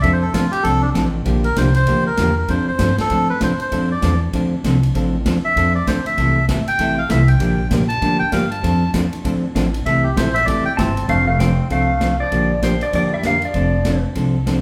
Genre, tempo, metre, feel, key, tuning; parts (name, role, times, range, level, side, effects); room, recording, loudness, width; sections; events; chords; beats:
country, western swing; 195 BPM; 4/4; swing 61% on 8ths; F major; A4 = 439 Hz
melodica; second line; 0.0-14.0 s; F3 to A5; -24 LUFS; equal
hollow-body jazz guitar; accompaniment; 0.0-14.6 s; C3 to A4; -23 LUFS; equal
upright bass; bass; 0.0-14.6 s; F1 to Bb2; -22 LUFS; equal
swinging big-band drum kit; drums; 0.0-14.6 s; hi-hat, kick drum, ride cymbal, snare drum; -29 LUFS; equal
pedal steel guitar; melody; 10.8-14.0 s; C5 to A5; -23 LUFS; equal
wet large studio reverb, RT60 1.2 s; band playing live in one room; -18 LUFS; mono
0.0-11.1 A section; 11.1-14.6 B section
melodica solo 0.0-11.1
0.0 F6; 1.3 Bb6; 2.5 F6; 6.2 C6; 7.4 Bb6; 8.6 F6; 9.9 C6; 11.1 F6; 12.3 Bb6; 13.5 F6
| 0.03 0.34 0.65 0.96 | 1.26 1.57 1.88 2.18 | 2.49 2.80 3.11 3.41 | 3.72 4.03 4.33 4.64 | 4.95 5.26 5.56 5.87 | 6.18 6.48 6.79 7.10 | 7.40 7.71 8.02 8.32 | 8.63 8.94 9.25 9.55 | 9.86 10.17 10.47 10.78 | 11.09 11.39 11.70 12.01 | 12.32 12.62 12.93 13.24 | 13.55 13.86 14.16 14.47